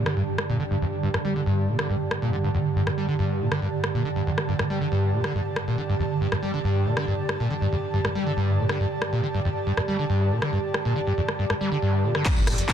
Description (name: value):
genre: driving peak-time techno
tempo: 139 BPM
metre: 4/4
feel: straight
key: unclear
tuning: A4 = 440 Hz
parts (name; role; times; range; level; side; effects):
- screaming distorted acid line; riff; 0.0-12.7 s; G1 to G3; -25 LUFS; equal; distortion, lush chorus, sidechain pumping, tape echo
- swarming drone; drone; 0.0-12.3 s; G2 to D3; -30 LUFS; right 3 dB; built-in reverb, sidechain pumping
- impact; sound effects; 0.0-0.2, 12.3-12.7 s; none; -34 LUFS; left 1 dB; none
- airy breathy pad; texture; 0.0-12.7 s; G4 to A5; -30 LUFS; right 2 dB; chorus, sidechain pumping
- techno drum kit; drums; 0.1-12.7 s; crash cymbal, handclaps, hi-hat, rim click, tambourine; -29 LUFS; left 1 dB; soft clipping on snare, sidechain pumping on hats, sidechain pumping on perc, sidechain pumping on cymbals
- electronic kick drum; drums; 12.3-12.7 s; none; -23 LUFS; equal; none
- tight sequencer bass; bass; 12.5-12.6 s; G1; -27 LUFS; equal; tube saturation, sidechain pumping
room: light reverb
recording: dense, heavily limited modern master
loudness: -22 LUFS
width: side -9 dB against mid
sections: 0.0-12.3 A section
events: impact 0.0, 12.3-12.7; filter sweep on acid bass 0.0-12.3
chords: 0.0 G5